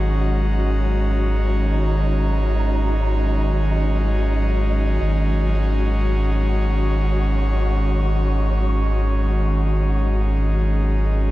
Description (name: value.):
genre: ambient.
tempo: free time.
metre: none.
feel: none.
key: unclear.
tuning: A4 = 440 Hz.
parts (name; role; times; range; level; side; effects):
airy breathy pad; sustained chords; 0.0-11.3 s; D#3 to F#4; -24 LUFS; equal; chorus.
soft dub sub bass; bass; 0.0-11.3 s; G#1; -19 LUFS; equal; none.
wind-like tuned noise texture; texture; 0.0-11.3 s; F#3 to F#4; -29 LUFS; right 1 dB; built-in reverb.
room: little or no reverb.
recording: none.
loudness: -18 LUFS.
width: side -16 dB against mid.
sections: 0.0-11.3 A section.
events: none.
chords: 0.0 G#5.